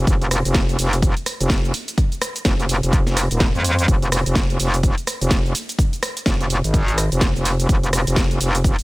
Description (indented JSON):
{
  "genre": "bass house",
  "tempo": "126 BPM",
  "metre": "4/4",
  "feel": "swing 60% on 16ths",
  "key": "F minor",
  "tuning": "A4 = 440 Hz",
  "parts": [
    { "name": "metallic wobble bass", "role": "bass", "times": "0.0-8.8 s", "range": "Eb1 to F2", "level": "-19 LUFS", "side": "equal", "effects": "chorus, tube saturation, sidechain pumping" },
    { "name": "electronic kick drum", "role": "drums", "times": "0.1-8.8 s", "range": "none", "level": "-18 LUFS", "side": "equal", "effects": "none" },
    { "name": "house drum kit", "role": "drums", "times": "0.1-8.8 s", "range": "cabasa, hi-hat, rim click, snare drum", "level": "-23 LUFS", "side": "equal", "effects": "none" }
  ],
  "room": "little or no reverb",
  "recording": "none",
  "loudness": "-17 LUFS",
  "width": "side -21 dB against mid",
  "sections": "0.0-8.8 A section",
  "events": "none",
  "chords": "none",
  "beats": "| 0.07 0.55 1.02 1.50 | 1.98 2.45 2.93 3.40 | 3.88 4.36 4.83 5.31 | 5.79 6.26 6.74 7.21 | 7.69 8.17 8.64"
}